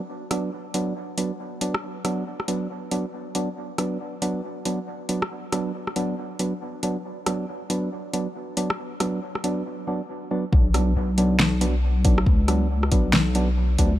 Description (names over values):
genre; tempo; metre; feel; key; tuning
deep dubstep; 138 BPM; 4/4; swing 61% on 16ths, half-time; B minor; A4 = 440 Hz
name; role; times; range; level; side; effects
percussive organ stab; stabs; 0.3-13.9 s; F#3 to D4; -27 LUFS; right 1 dB; chorus, dub echo
deep house drum kit; drums; 0.3-13.9 s; hi-hat, rim click, snare drum; -26 LUFS; equal; none
deep soft wobble bass; bass; 10.5-14.0 s; B1 to D2; -21 LUFS; left 1 dB; chorus
electronic kick drum; drums; 10.5-13.9 s; none; -19 LUFS; equal; none
room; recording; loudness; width
light reverb; dark, warm production; -22 LUFS; side -14 dB against mid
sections
0.0-10.5 A section; 10.5-14.0 B section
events
drop 10.5-14.0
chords
0.0 Bm